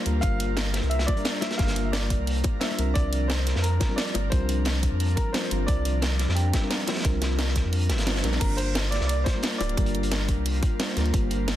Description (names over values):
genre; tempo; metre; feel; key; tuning
liquid drum and bass; 176 BPM; 4/4; straight; G minor; A4 = 439 Hz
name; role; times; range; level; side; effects
mellow FM electric piano; accompaniment; 0.0-11.6 s; G3 to C5; -31 LUFS; left 1 dB; chorus, ping-pong delay
airy breathy pad; sustained chords; 0.0-11.6 s; F3 to Bb4; -36 LUFS; right 1 dB; chorus, sidechain pumping
warm sub bass; bass; 0.1-11.6 s; D1 to F2; -26 LUFS; equal; none
crunchy breakbeat drum kit; drums; 0.1-11.6 s; hi-hat, snare drum; -34 LUFS; equal; high-pass filter on hats, small room ambience, high-pass filter on snare, high-pass filter on room
garage drum kit; drums; 0.1-11.5 s; crash cymbal, hi-hat, snare drum; -30 LUFS; equal; small room ambience
warm baby grand piano; melody; 0.2-10.2 s; G4 to F5; -33 LUFS; right 1 dB; digital delay
electronic kick drum; drums; 0.2-11.2 s; none; -25 LUFS; equal; small room ambience
bongos; percussion; 1.1-4.2, 6.5-7.0, 9.3-9.7 s; none; -35 LUFS; left 8 dB; none
room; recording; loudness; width
light reverb, small room ambience; dense, heavily limited modern master; -22 LUFS; side -13 dB against mid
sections
0.0-8.4 A section; 8.4-11.6 A section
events
drop 0.0-8.4, 8.4-11.6; kick drops out 7.7-8.4; band accent 8.1; drum fill 8.2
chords
0.0 Gm7